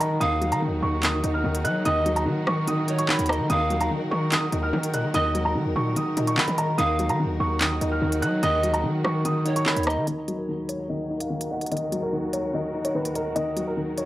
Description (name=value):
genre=hip hop, drill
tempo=146 BPM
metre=4/4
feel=half-time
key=Eb minor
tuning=A4 = 440 Hz
part: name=dark baby grand piano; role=melody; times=0.0-14.1 s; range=Bb4 to Gb6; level=-28 LUFS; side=right 1 dB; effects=low-pass filter, tape echo
part: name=felt-muted upright piano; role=accompaniment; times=0.0-14.1 s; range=Eb3 to Eb5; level=-27 LUFS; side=left 1 dB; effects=low-pass filter
part: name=warm studio string section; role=sustained chords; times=0.0-14.1 s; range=Eb2 to Bb4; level=-33 LUFS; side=left 1 dB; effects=low-pass filter
part: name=distorted 808-style bass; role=bass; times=0.0-10.1 s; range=Eb2 to Gb3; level=-27 LUFS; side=equal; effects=distortion
part: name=drill drum kit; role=drums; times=0.0-14.1 s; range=handclaps, hi-hat, rim click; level=-27 LUFS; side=equal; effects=none
part: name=breathy mellow pan flute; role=second line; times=0.2-10.1 s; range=Db5 to F5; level=-30 LUFS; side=right 1 dB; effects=tape echo
room=studio reverb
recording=dry, gritty hardware recording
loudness=-22 LUFS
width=side -15 dB against mid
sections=0.0-10.1 A section; 10.1-14.1 B section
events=filter sweep 10.1-14.1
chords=0.0 Ebm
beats=| 0.21 0.62 1.03 1.44 | 1.85 2.27 2.68 3.09 | 3.50 3.91 4.32 4.73 | 5.14 5.55 5.96 6.37 | 6.79 7.20 7.61 8.02 | 8.43 8.84 9.25 9.66 | 10.07 10.48 10.89 11.31 | 11.72 12.13 12.54 12.95 | 13.36 13.77